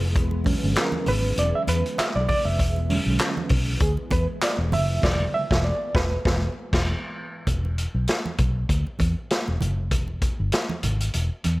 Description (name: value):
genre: funk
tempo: 98 BPM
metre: 4/4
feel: swing 56% on 16ths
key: E mixolydian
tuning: A4 = 444 Hz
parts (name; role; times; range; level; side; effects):
- soft string machine; sustained chords; 0.0-7.4 s; E3 to B3; -36 LUFS; left 1 dB; phaser, ensemble chorus
- vintage muted fingered electric bass; bass; 0.0-11.6 s; E1 to E2; -24 LUFS; equal; none
- congas; percussion; 0.1-11.6 s; none; -33 LUFS; right 3 dB; none
- vintage drum kit; drums; 0.2-11.6 s; crash cymbal, handclaps, hi-hat, kick drum, snare drum; -25 LUFS; equal; none
- reed electric piano; stabs; 0.4-6.5 s; C#3 to E5; -26 LUFS; right 2 dB; fast tremolo
room: light reverb, small room ambience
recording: none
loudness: -21 LUFS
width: side -20 dB against mid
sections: 0.0-7.5 A section; 7.5-11.6 B section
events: reed electric piano solo 0.0-7.5; band accent 5.0-7.5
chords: 0.0 E13; 7.5 N.C.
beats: | 0.16 0.77 1.37 1.98 | 2.59 3.20 3.81 4.42 | 5.03 5.64 6.25 6.86 | 7.47 8.08 8.69 9.30 | 9.91 10.53 11.14